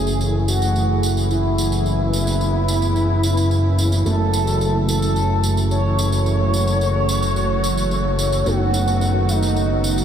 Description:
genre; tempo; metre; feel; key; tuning
synthwave; 109 BPM; 4/4; straight; F# dorian; A4 = 441 Hz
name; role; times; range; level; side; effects
expressive synth lead; melody; 0.0-10.0 s; D#4 to C#5; -23 LUFS; equal; wide subtle chorus, ping-pong delay
lush unison pad; sustained chords; 0.0-10.0 s; C#3 to G#4; -24 LUFS; equal; chorus
mellow tine electric piano; stabs; 0.0-10.0 s; A3 to G#4; -29 LUFS; right 2 dB; slow stereo tremolo, low-pass filter, ping-pong delay
fat analog bass; bass; 0.0-10.0 s; F#1; -19 LUFS; equal; none
tambourine; drums; 0.1-10.0 s; none; -29 LUFS; right 3 dB; overdrive
room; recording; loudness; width
wet cathedral reverb, RT60 5.8 s; dreamy mix soaked in reverb; -16 LUFS; side -9 dB against mid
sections
0.0-10.0 A section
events
filter sweep on analog synth pad 0.0-10.0; filter sweep on tine electric piano 0.0-10.0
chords
0.0 Amaj7/F#; 4.1 F#m7; 8.5 B7/F#

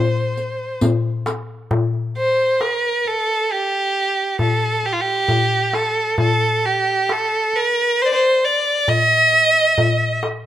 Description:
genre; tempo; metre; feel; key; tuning
Arabic maqam ensemble; 134 BPM (eighths); 10/8; straight; C maqam rast; A4 = 440 Hz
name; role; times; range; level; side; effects
clear violin; melody; 0.0-10.2 s; F4 to E5-45c; -16 LUFS; right 1 dB; none
oud; second line; 0.0-0.8 s; none; barely audible; none; none
darbuka; percussion; 0.4-10.4 s; none; -21 LUFS; left 2 dB; none
riq; percussion; 0.4-1.5 s; none; -24 LUFS; equal; none
room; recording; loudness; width
moderate spring reverb, RT60 1.6 s; minimal, uncompressed stereo recording; -16 LUFS; side -12 dB against mid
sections
0.0-1.7 A section; 1.7-10.5 B section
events
none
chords
none

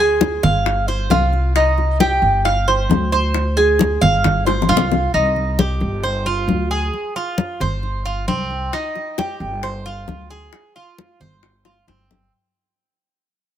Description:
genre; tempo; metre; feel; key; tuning
latin, Cuban son and guajira; 134 BPM; 4/4; straight; unclear; A4 = 440 Hz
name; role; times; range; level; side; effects
Cuban tres; arpeggios; 0.0-12.3 s; C4 to F5; -19 LUFS; right 2 dB; none
upright bass; bass; 0.0-12.3 s; G1 to D2; -21 LUFS; equal; none
bongos; percussion; 0.2-5.0, 8.7-12.2 s; none; -23 LUFS; left 8 dB; none
congas; percussion; 0.2-12.2 s; none; -20 LUFS; left 2 dB; none
room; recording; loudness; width
light reverb; none; -16 LUFS; side -10 dB against mid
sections
0.0-5.1 A section; 5.1-12.3 B section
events
drum fill 4.5-5.1, 11.7-12.3; fade-out 5.1-12.3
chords
0.0 Ddim; 0.7 G7sus4; 1.6 Cm; 2.5 G7sus4; 3.4 Dm7b5; 4.2 G7sus4; 5.1 Cm; 6.0 G7sus4; 6.9 Fmadd9; 7.8 G7sus4; 8.7 Eb; 9.6 G7sus4; 10.5 Fmadd9; 11.4 G7sus4

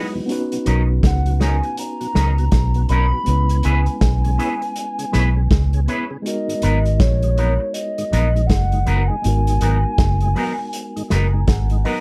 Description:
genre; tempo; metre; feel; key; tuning
lovers rock reggae; 80 BPM; 4/4; swing 61% on 16ths; G# minor; A4 = 440 Hz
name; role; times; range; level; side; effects
mellow tine electric piano; accompaniment; 0.0-12.0 s; F#3 to A#5; -30 LUFS; equal; none
electric guitar with an envelope filter; stabs; 0.0-12.0 s; F#3 to B4; -26 LUFS; equal; none
tonewheel organ; accompaniment; 0.1-12.0 s; E2 to F#4; -34 LUFS; equal; chorus vibrato, slow rotary speaker, slapback echo
vintage drum kit; drums; 0.3-12.0 s; hi-hat, kick drum, snare drum; -23 LUFS; equal; none
vintage muted fingered electric bass; bass; 0.7-11.8 s; F#1 to C#2; -19 LUFS; equal; none
hollow clarinet-like synth lead; melody; 1.1-11.5 s; C#5 to B5; -28 LUFS; equal; chorus, tape echo
room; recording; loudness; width
little or no reverb; none; -19 LUFS; mono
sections
0.0-12.0 A section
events
tine electric piano fill 10.7-12.0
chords
0.3 Bmaj9; 3.3 C#m7; 6.3 G#m9

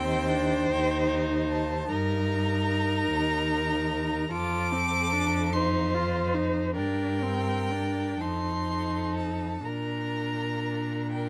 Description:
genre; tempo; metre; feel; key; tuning
classical, slow romantic movement for string quartet; 39-50 BPM (dotted quarters); 6/8; rubato; unclear; A4 = 440 Hz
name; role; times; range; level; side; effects
clear violin; melody; 0.0-11.3 s; G5 to D6; -35 LUFS; equal; none
warm violin; second line; 0.0-11.3 s; A4 to C5; -35 LUFS; equal; none
rich viola; accompaniment; 0.0-11.3 s; C4 to F4; -33 LUFS; equal; none
rich cello; bass; 0.0-11.3 s; Eb2 to Bb2; -33 LUFS; equal; none
room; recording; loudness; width
light reverb; none; -28 LUFS; mono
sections
0.0-11.3 A section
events
none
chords
0.0 Cm/Eb; 0.7 Eb6; 1.9 Eb/G; 4.3 F; 6.8 Gm; 8.2 F7; 9.7 Bb

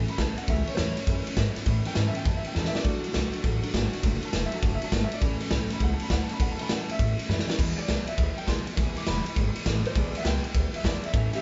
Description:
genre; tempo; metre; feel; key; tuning
rockabilly; 203 BPM; 4/4; swing 65% on 8ths; A major; A4 = 438 Hz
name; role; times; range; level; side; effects
clear upright piano; accompaniment; 0.0-11.4 s; E3 to D6; -38 LUFS; equal; none
picked steel-string acoustic guitar; accompaniment; 0.0-11.4 s; E2 to F#4; -38 LUFS; equal; none
upright bass; bass; 0.0-11.4 s; E1 to A2; -32 LUFS; equal; none
raw garage drum kit; drums; 0.1-11.4 s; crash cymbal, kick drum, ride cymbal, snare drum; -30 LUFS; equal; none
room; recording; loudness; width
light reverb; band playing live in one room, nothing above 7.6 kHz; -27 LUFS; mono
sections
0.0-11.4 A section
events
upright piano solo 0.0-11.4; drum fill 2.6, 7.3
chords
0.0 A; 2.9 D; 5.2 A; 7.6 E

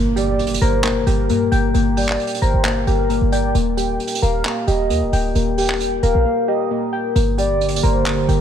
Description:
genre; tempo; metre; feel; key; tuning
hip hop, trap; 133 BPM; 4/4; half-time; G minor; A4 = 439 Hz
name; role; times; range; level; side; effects
soft electric-piano-like synth keys; arpeggios; 0.0-8.4 s; Bb3 to G5; -20 LUFS; left 3 dB; chorus, phaser, low-pass filter, digital delay
short 808-style bass; bass; 0.0-8.4 s; D1 to G2; -19 LUFS; right 1 dB; none
impact; sound effects; 0.0-1.7 s; none; -32 LUFS; right 1 dB; none
warm velvety synth lead; second line; 0.2-8.4 s; Bb4 to G5; -24 LUFS; right 1 dB; chorus, digital delay
vintage brush drum kit; drums; 0.2-8.4 s; handclaps, hi-hat; -26 LUFS; right 2 dB; vintage 12-bit sampler grit
dark analog pad; sustained chords; 7.2-8.4 s; D3 to G4; -23 LUFS; right 4 dB; chorus
room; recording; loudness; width
light reverb, small room ambience; none; -16 LUFS; side -9 dB against mid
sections
0.0-8.4 A section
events
impact 0.0-1.7; drums muted 6.3-7.2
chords
0.0 Gm; 3.5 Eb; 7.2 Gm

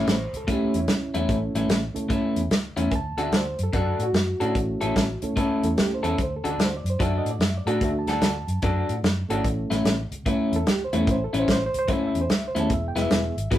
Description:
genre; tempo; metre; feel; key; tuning
electric blues shuffle; 147 BPM; 4/4; swing 65% on 8ths; A major; A4 = 440 Hz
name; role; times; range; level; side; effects
reed electric piano; accompaniment; 0.0-13.6 s; G#3 to A5; -29 LUFS; right 2 dB; none
electric guitar through a small old amp; riff; 0.0-13.6 s; A2 to A4; -25 LUFS; left 1 dB; none
vintage muted fingered electric bass; bass; 0.0-13.6 s; E1 to A2; -29 LUFS; equal; none
warm soul drum kit; drums; 0.1-13.6 s; hi-hat, kick drum, snare drum; -25 LUFS; equal; none
room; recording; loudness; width
wet studio ambience, RT60 0.5 s; rough rehearsal-room recording; -22 LUFS; side -12 dB against mid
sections
0.0-13.6 A section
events
none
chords
0.0 A; 2.9 D; 4.5 A; 6.2 D; 9.4 A; 12.7 E

